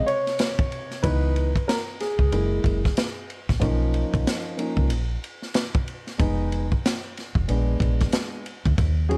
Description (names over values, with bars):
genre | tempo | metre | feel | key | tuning
hip hop, jazz-hop | 93 BPM | 4/4 | swing 60% on 16ths | unclear | A4 = 439 Hz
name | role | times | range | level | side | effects
dark baby grand piano | accompaniment | 0.0-9.2 s | C3 to Db5 | -29 LUFS | equal | cassette tape
open jazz drum kit | drums | 0.1-9.2 s | hi-hat, kick drum, ride cymbal, snare drum | -28 LUFS | equal | cassette tape
deep dub fingered electric bass | bass | 1.0-9.2 s | F1 to Eb2 | -26 LUFS | equal | none
room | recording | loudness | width
small room ambience | home recording on cassette | -24 LUFS | mono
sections
0.0-9.2 A section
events
grand piano solo 0.0-9.2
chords
0.0 N.C.; 1.0 Dbm7; 2.3 Gb9; 3.6 Bmaj9#11; 6.2 Fm7b5; 7.5 Bb7b9